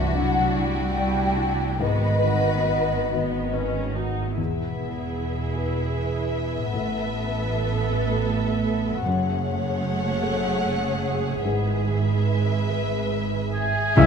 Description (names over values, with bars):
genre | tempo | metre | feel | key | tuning
cinematic, emotional film score for orchestra | 46-52 BPM (dotted quarters) | 6/8 | rubato | E major | A4 = 439 Hz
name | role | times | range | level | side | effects
large flute ensemble | second line | 0.0-4.0, 13.6-14.1 s | D#5 to G5 | -27 LUFS | left 2 dB | none
muted symphonic violin section | second line | 0.0-14.1 s | F#4 to F#5 | -30 LUFS | left 2 dB | none
felt-muted upright piano | accompaniment | 0.0-14.1 s | C2 to D5 | -30 LUFS | left 4 dB | none
muted symphonic viola section | accompaniment | 0.0-14.0 s | G#3 to A4 | -31 LUFS | right 2 dB | none
concert harp | arpeggios | 0.0-14.1 s | E2 to A4 | -35 LUFS | left 10 dB | none
muted symphonic cello section | bass | 0.0-14.1 s | C#2 to G3 | -30 LUFS | right 3 dB | none
muted symphonic double bass section | bass | 0.0-14.1 s | E1 to C#2 | -27 LUFS | right 4 dB | none
warm oboe | second line | 13.5-14.1 s | G#4 | -25 LUFS | right 1 dB | none
muted symphonic violin section | melody | 13.6-14.1 s | G#5 | -29 LUFS | left 2 dB | none
mellow clarinet | second line | 14.0-14.1 s | E5 | -21 LUFS | left 1 dB | none
mellow French horn section | sustained chords | 14.0-14.1 s | C#4 to E4 | -22 LUFS | left 6 dB | none
timpani | percussion | 14.0-14.1 s | C#3 | -16 LUFS | left 3 dB | none
room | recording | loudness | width
moderate scoring stage reverb, RT60 1.4 s | minimal, uncompressed stereo recording | -22 LUFS | side -6 dB against mid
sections
0.0-4.4 A section; 4.4-14.0 B section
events
none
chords
0.0 Cadd9; 1.8 G#m7; 4.4 E; 6.7 Asus2; 9.1 F#madd9; 11.4 E/G#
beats
0.55 | 1.80 3.11 | 4.38 5.57 | 6.74 7.91 | 9.06 10.24 | 11.44 12.70 | 13.96